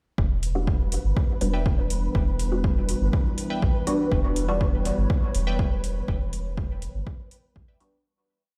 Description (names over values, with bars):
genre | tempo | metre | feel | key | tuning
dub techno | 122 BPM | 4/4 | straight | E dorian | A4 = 440 Hz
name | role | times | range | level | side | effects
warbly tape-like pad | sustained chords | 0.9-8.0 s | E3 to C#5 | -36 LUFS | equal | chorus, built-in reverb, sidechain pumping
soft dub sub bass | bass | 0.2-7.6 s | E1 to B1 | -29 LUFS | equal | sidechain pumping
electronic kick drum | drums | 0.2-7.7 s | none | -27 LUFS | equal | small room ambience
flickering grainy texture | texture | 0.5-8.1 s | B4 | -40 LUFS | equal | built-in reverb, sidechain pumping
electronic hi-hat | drums | 0.4-7.9 s | none | -38 LUFS | equal | overdrive, small room ambience
filtered dub chord stab | stabs | 0.6-8.0 s | G3 to F#4 | -32 LUFS | equal | phaser, sidechain pumping, dub echo
wavetable chord stab | riff | 1.5-7.9 s | B4 to G5 | -40 LUFS | equal | sidechain pumping, dub echo
room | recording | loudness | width
little or no reverb | played on a big sound system in a bare room, stone room reverb | -25 LUFS | mono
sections
0.2-8.1 groove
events
filter sweep on synth stab 0.2-8.1; fade-out 5.4-8.1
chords
0.2 Em7